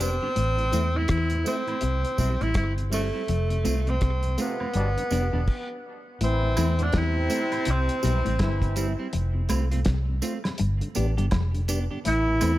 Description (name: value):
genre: roots reggae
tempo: 82 BPM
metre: 4/4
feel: swing 60% on 16ths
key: A minor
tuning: A4 = 436 Hz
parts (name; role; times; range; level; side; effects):
- warm tenor saxophone; melody; 0.0-12.6 s; A3 to E4; -28 LUFS; equal; tape echo
- clean electric guitar; accompaniment; 0.0-12.6 s; G3 to G4; -34 LUFS; right 5 dB; tape echo
- mellow tonewheel organ; accompaniment; 0.0-12.5 s; F2 to F4; -36 LUFS; left 2 dB; overdrive, chorus vibrato, slow rotary speaker, slapback echo
- vintage muted fingered electric bass; bass; 0.0-12.6 s; E1 to E2; -25 LUFS; equal; none
- tambourine and woodblock; percussion; 0.0-12.6 s; none; -37 LUFS; right 3 dB; none
- semi-hollow electric guitar; riff; 0.4-12.6 s; E2 to E3; -33 LUFS; left 4 dB; none
- cloth-damped thuddy drum kit; drums; 0.4-12.6 s; crash cymbal, hi-hat, kick drum, rim click, snare drum; -29 LUFS; equal; slapback echo
- bright trombone section; second line; 4.4-12.6 s; B2 to F4; -32 LUFS; right 1 dB; tape echo
room: light reverb, studio ambience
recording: none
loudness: -23 LUFS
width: side -15 dB against mid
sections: 0.0-6.2 A section; 6.2-12.6 B section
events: band accent 3.3-6.2; stop 5.5-6.2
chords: 0.4 Am; 1.8 C; 3.3 F; 4.7 G; 5.5 N.C.; 6.2 Am; 7.7 C; 9.1 F; 10.6 G; 12.1 Am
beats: | 0.37 1.10 1.83 2.56 | 3.29 4.02 4.75 5.48 | 6.21 6.94 7.67 8.40 | 9.13 9.86 10.59 11.32 | 12.05